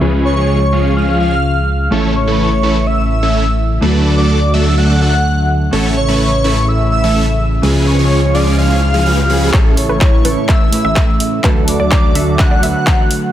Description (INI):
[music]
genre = EDM, festival progressive house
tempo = 126 BPM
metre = 4/4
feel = straight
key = A major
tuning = A4 = 438 Hz
[part]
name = mellow electric guitar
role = accompaniment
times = 0.0-13.3 s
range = A2 to B4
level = -19 LUFS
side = right 1 dB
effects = sidechain pumping
[part]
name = lush unison pad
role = sustained chords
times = 0.0-13.3 s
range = C#3 to F#4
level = -21 LUFS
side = equal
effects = chorus, phaser, sidechain pumping
[part]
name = big supersaw lead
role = riff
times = 0.0-12.8 s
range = E3 to E#5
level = -18 LUFS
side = right 1 dB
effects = sidechain pumping, low-pass filter
[part]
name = wide detuned saw bass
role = bass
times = 0.0-12.7 s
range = A1 to D2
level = -16 LUFS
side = equal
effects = chorus, sidechain pumping
[part]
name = airy dreamy lead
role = melody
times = 0.2-13.3 s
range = C#5 to F#5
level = -18 LUFS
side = equal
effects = chorus, vintage 12-bit sampler grit, tape echo
[part]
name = riser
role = sound effects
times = 7.5-9.5 s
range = none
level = -27 LUFS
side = equal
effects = none
[part]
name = wide unison pluck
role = arpeggios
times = 9.5-12.8 s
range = B4 to E5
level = -24 LUFS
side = right 1 dB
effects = sidechain pumping, tape echo
[part]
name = electronic kick drum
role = drums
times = 9.5-13.0 s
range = none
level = -12 LUFS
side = equal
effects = overdrive
[part]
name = house drum kit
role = drums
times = 9.5-13.2 s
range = handclaps, hi-hat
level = -20 LUFS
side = equal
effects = overdrive
[sound]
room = light reverb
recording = none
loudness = -10 LUFS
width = side -11 dB against mid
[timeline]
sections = 0.0-9.5 A section; 9.5-13.3 B section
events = filter sweep on analog synth pad 0.0-9.5; build-up 9.5-13.3; drum fill 9.5-13.3; filter sweep on supersaw synth 9.5-13.3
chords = 0.0 C#; 1.9 A; 3.8 D; 5.7 A; 7.6 C#; 9.5 A; 11.4 D